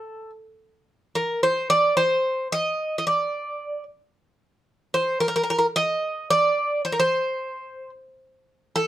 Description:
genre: greek folk.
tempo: 221 BPM (eighths).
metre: 7/8.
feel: straight.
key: unclear.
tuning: A4 = 440 Hz.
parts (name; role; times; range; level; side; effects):
Greek bouzouki; solo; 0.0-8.9 s; A4 to Eb5; -21 LUFS; right 1 dB; none.
room: moderate studio reverb, RT60 0.5 s.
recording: dark, warm production.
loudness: -21 LUFS.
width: side -13 dB against mid.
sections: 0.0-8.9 A section.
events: none.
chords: none.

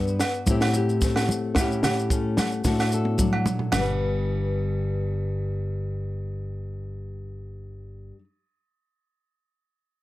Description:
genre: highlife guitar band.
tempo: 110 BPM.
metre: 4/4.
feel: straight.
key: G major.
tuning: A4 = 440 Hz.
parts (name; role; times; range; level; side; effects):
nylon-string guitar; accompaniment; 0.0-8.2 s; G2 to D5; -28 LUFS; left 4 dB; none.
fingered electric bass; bass; 0.0-8.1 s; G1 to A2; -27 LUFS; equal; none.
maracas; percussion; 0.1-4.0 s; none; -36 LUFS; left 3 dB; none.
compact cocktail drum kit; drums; 0.2-3.9 s; kick drum, ride cymbal, snare drum, toms; -27 LUFS; equal; none.
agogo bells; percussion; 0.2-3.9 s; none; -30 LUFS; right 4 dB; none.
congas; percussion; 0.5-4.0 s; none; -29 LUFS; equal; none.
room: light reverb.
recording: none.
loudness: -22 LUFS.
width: side -16 dB against mid.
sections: 0.0-3.7 A section; 3.7-8.1 B section.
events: drum fill 2.6-3.7.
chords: 0.5 Am7; 1.6 A7; 2.6 D/A; 3.7 G.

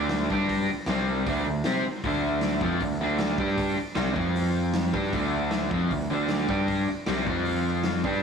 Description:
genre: garage rock duo or trio.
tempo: 155 BPM.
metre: 4/4.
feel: straight.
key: unclear.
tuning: A4 = 440 Hz.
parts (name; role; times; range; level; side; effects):
crunchy overdriven guitar; riff; 0.0-8.2 s; C3 to C5; -25 LUFS; equal; spring reverb.
growling picked electric bass; bass; 0.0-8.2 s; C2 to C3; -32 LUFS; right 1 dB; overdrive, tube saturation.
raw garage drum kit; drums; 0.1-8.2 s; hi-hat, kick drum, snare drum; -31 LUFS; left 1 dB; none.
room: light reverb.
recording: rough rehearsal-room recording.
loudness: -24 LUFS.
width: side -6 dB against mid.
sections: 0.0-8.2 A section.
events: none.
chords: 0.3 G5; 0.7 N.C.; 0.9 C5; 1.3 D5; 3.4 G5; 3.8 C5; 4.2 F5; 4.9 D5; 6.5 G5; 6.9 C5; 7.3 F5; 8.0 G5.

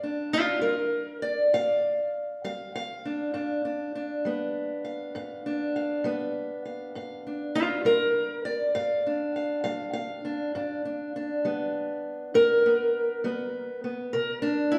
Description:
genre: acoustic country blues, solo or duo.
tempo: 67 BPM (dotted quarters).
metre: 12/8.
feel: straight.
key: G mixolydian.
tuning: A4 = 440 Hz.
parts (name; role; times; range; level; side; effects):
fingerpicked steel-string acoustic guitar; solo; 0.0-14.8 s; G2 to F5; -28 LUFS; equal; none.
room: wet recital hall reverb, RT60 1.4 s.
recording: recorded in a church or concert hall.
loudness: -28 LUFS.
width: mono.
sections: 0.0-14.8 A section.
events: none.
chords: 0.0 G7; 14.1 C7(no3).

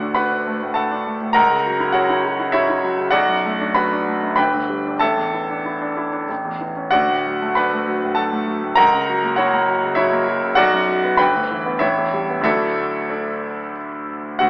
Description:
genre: classical, virtuoso piano study.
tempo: 89-102 BPM.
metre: 3/4.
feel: rubato.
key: D major.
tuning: A4 = 442 Hz.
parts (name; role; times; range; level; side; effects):
clear concert grand piano; solo; 0.0-14.5 s; G1 to B5; -16 LUFS; equal; none.
room: wet stone room reverb, RT60 1.1 s.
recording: AM radio sound.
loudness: -16 LUFS.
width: side -24 dB against mid.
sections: 0.0-14.4 A section.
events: none.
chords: 0.0 D; 1.4 F#7/C#; 3.1 Bm7; 4.4 G; 5.0 Asus4; 6.3 A; 6.9 D; 8.8 F#7/C#; 10.6 Bm; 11.2 Em7/G; 11.8 A9; 12.5 D.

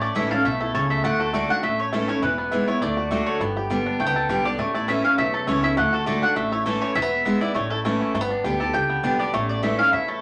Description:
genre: bluegrass.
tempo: 203 BPM.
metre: 4/4.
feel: straight.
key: A mixolydian.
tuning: A4 = 440 Hz.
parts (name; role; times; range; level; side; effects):
bluegrass banjo; melody; 0.0-10.2 s; E3 to A4; -29 LUFS; equal; none.
mandolin; melody; 0.0-10.2 s; A4 to G5; -26 LUFS; equal; none.
picked steel-string acoustic guitar; accompaniment; 0.0-10.2 s; E2 to G4; -27 LUFS; equal; none.
upright bass; bass; 0.0-10.2 s; E1 to E2; -34 LUFS; equal; none.
room: wet small room reverb, RT60 0.5 s.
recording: none.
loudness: -23 LUFS.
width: mono.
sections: 0.0-8.1 A section; 8.1-10.2 A section.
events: none.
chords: 0.0 A; 1.0 D; 1.6 A; 2.2 E; 2.8 D; 3.4 G; 4.6 A; 5.8 D; 6.4 A; 7.0 E; 7.6 A; 8.1 G; 9.3 A.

